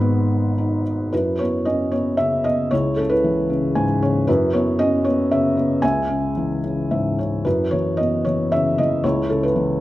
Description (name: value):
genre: classical, lyrical solo piano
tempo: 114 BPM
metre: 3/4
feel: uneven beats, rubato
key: C# minor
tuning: A4 = 440 Hz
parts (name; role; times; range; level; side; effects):
- felt-muted upright piano; solo; 0.0-9.8 s; G#1 to B5; -18 LUFS; equal; none
room: moderate recital hall reverb, RT60 1.4 s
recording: none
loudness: -18 LUFS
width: side -16 dB against mid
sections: 0.0-1.1 A section; 1.1-9.8 B section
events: felt piano fill 3.5-4.3, 6.6-7.5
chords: 0.0 G#m7; 1.1 F#7sus4; 2.7 C#m7; 4.3 F#7sus4; 5.8 C#m; 7.5 F#7sus4; 9.0 C#m7